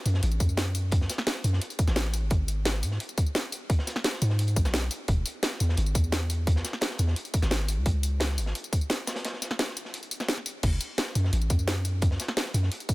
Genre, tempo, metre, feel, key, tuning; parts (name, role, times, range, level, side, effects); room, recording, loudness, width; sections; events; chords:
liquid drum and bass; 173 BPM; 4/4; straight; A4 = 440 Hz
long sustained 808-style bass; bass; 0.1-8.5, 10.6-12.7 s; E1 to G#2; -26 LUFS; equal
crunchy breakbeat drum kit; drums; 0.1-12.9 s; hi-hat, snare drum; -37 LUFS; equal; high-pass filter on hats, small room ambience, high-pass filter on snare, high-pass filter on room
drum and bass drum kit; drums; 0.1-12.9 s; crash cymbal, hi-hat, snare drum, tambourine; -31 LUFS; equal; small room ambience
electronic kick drum; drums; 0.4-12.9 s; -25 LUFS; equal; small room ambience
small room ambience; -25 LUFS; side -20 dB against mid
0.0-12.9 A section
break 9.2-10.6